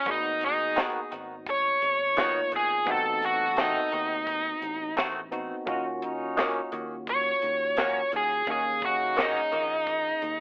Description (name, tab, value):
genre	straight-eighth soul blues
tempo	86 BPM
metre	4/4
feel	swing 55% on 16ths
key	Eb minor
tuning	A4 = 440 Hz
part	smooth overdriven lead guitar	melody	0.0-10.4 s	Eb4 to Db5	-25 LUFS	equal	none
part	barky tine electric piano	accompaniment	0.0-10.4 s	Bb3 to F5	-36 LUFS	equal	medium stereo tremolo
part	warm horn section	sustained chords	0.1-9.5 s	Cb4 to A4	-35 LUFS	equal	none
part	fingered electric bass	bass	0.1-10.4 s	Ab1 to Eb2	-43 LUFS	equal	none
part	tight funk drum kit	drums	0.1-10.4 s	hi-hat, kick drum, snare drum	-31 LUFS	equal	none
part	direct-recorded clean electric guitar	stabs	0.8-9.4 s	Eb3 to Gb4	-31 LUFS	equal	phaser, digital delay
room	light reverb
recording	telephone sound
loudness	-24 LUFS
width	side -36 dB against mid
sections	0.0-10.4 A section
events	lead electric guitar solo 0.0-10.4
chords	0.1 Abm7; 2.9 Adim7; 5.7 Ebm7